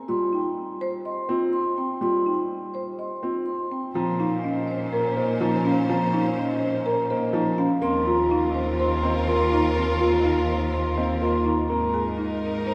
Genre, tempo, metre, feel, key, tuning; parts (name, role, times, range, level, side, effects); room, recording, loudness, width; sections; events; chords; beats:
classical, minimalist pattern music; 124 BPM; 4/4; straight; Bb dorian; A4 = 443 Hz
vibraphone with medium mallets; melody; 0.0-12.7 s; Bb4 to C6; -31 LUFS; equal
folk marimba with medium mallets; arpeggios; 0.0-12.7 s; C4 to Eb5; -28 LUFS; equal
clear grand piano; accompaniment; 0.1-12.0 s; F3 to C4; -32 LUFS; equal
rich chamber string section; sustained chords; 4.0-12.7 s; Db4 to C5; -34 LUFS; equal
rich cello; bass; 4.0-12.7 s; Eb2 to Bb2; -31 LUFS; equal
wet cathedral reverb, RT60 4.7 s; recorded in a church or concert hall; -24 LUFS; mono
0.0-4.0 A section; 4.0-12.7 A section
0.1 Cm; 4.0 Bbmadd9; 7.8 Ebsus2; 11.7 Absus2
| 0.08 0.57 1.05 1.53 | 2.02 2.50 2.99 3.47 | 3.96 4.44 4.92 5.41 | 5.89 6.37 6.86 7.34 | 7.83 8.31 8.79 9.28 | 9.76 10.24 10.73 11.21 | 11.70 12.18 12.66